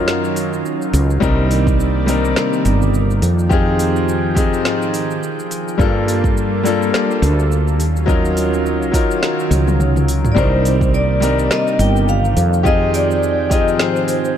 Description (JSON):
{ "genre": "sunset chillout", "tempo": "105 BPM", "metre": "4/4", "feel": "swing 57% on 16ths", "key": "C minor", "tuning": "A4 = 439 Hz", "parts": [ { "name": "bright grand piano", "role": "accompaniment", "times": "0.0-14.4 s", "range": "Gb3 to Bb4", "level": "-19 LUFS", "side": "moving between left 5 dB and right 4 dB", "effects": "auto-pan, low-pass filter, tape echo" }, { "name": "lush unison pad", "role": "sustained chords", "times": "0.0-14.4 s", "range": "C3 to G5", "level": "-23 LUFS", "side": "left 1 dB", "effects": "chorus" }, { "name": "woody fretless electric bass", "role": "bass", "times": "0.0-14.3 s", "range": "G1 to Ab2", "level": "-18 LUFS", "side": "equal", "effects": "tube saturation" }, { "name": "deep house drum kit", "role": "drums", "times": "0.1-14.3 s", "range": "hi-hat, shaker, snare drum, toms", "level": "-24 LUFS", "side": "equal", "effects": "none" }, { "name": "electronic kick drum", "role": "drums", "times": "1.2-13.6 s", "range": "none", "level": "-18 LUFS", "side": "equal", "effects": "none" }, { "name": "vibraphone with medium hard mallets", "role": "melody", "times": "10.3-14.3 s", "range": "C5 to G5", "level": "-19 LUFS", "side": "left 1 dB", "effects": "tape echo" } ], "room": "moderate lush hall reverb, RT60 2.5 s", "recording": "dark, warm production", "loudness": "-14 LUFS", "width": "side -9 dB against mid", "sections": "0.0-14.4 A section", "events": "drum fill 9.5-10.4; kick drops out 9.8-10.4", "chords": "0.0 Ebm9; 1.2 Cm9; 3.2 Fm9; 5.8 Gm9; 7.8 Ebm9; 10.4 Cm9; 12.4 Fm9" }